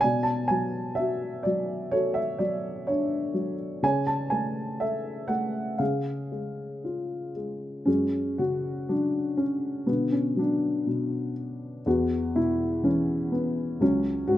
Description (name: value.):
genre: classical, lyrical solo piano.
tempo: 56-65 BPM.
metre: 4/4.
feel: rubato.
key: F# minor.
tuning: A4 = 441 Hz.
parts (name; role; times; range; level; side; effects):
dark upright piano; solo; 0.0-14.4 s; C#2 to A5; -25 LUFS; equal; none.
room: light reverb.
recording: close, detailed microphones.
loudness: -25 LUFS.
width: side -13 dB against mid.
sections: 0.0-7.9 A section; 7.9-14.4 B section.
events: none.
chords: 0.0 Bm7; 3.8 F#m9/C#; 5.8 C#; 7.9 F#sus2; 9.9 Bm; 11.9 E5; 13.8 C#sus4.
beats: | 0.04 0.98 1.93 2.87 | 3.83 4.80 5.80 6.84 | 7.88 8.89 9.88 10.87 | 11.86 12.84 13.81.